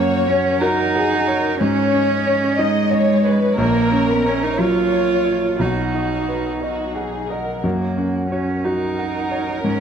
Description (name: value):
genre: neoclassical piano and strings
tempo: 60 BPM (dotted quarters)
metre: 6/8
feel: rubato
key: F# major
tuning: A4 = 440 Hz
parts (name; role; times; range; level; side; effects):
- dark symphonic violin section; melody; 0.0-9.8 s; F#4 to D#5; -22 LUFS; left 3 dB; tape echo
- warm cello; second line; 0.0-9.8 s; G#3 to E#4; -20 LUFS; right 4 dB; none
- warm concert grand piano; accompaniment; 0.0-9.8 s; A#1 to F#5; -21 LUFS; left 1 dB; none
- concert harp; arpeggios; 0.0-9.8 s; B3 to D#6; -28 LUFS; left 1 dB; tape echo
room: light reverb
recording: none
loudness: -16 LUFS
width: side -7 dB against mid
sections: 0.0-9.8 A section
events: none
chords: 0.0 F#; 1.6 C#sus2/G#; 3.6 F#/A#; 5.6 B; 7.6 F#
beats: 0.62 | 1.61 2.60 | 3.58 4.58 | 5.60 6.62 | 7.64 8.65 | 9.65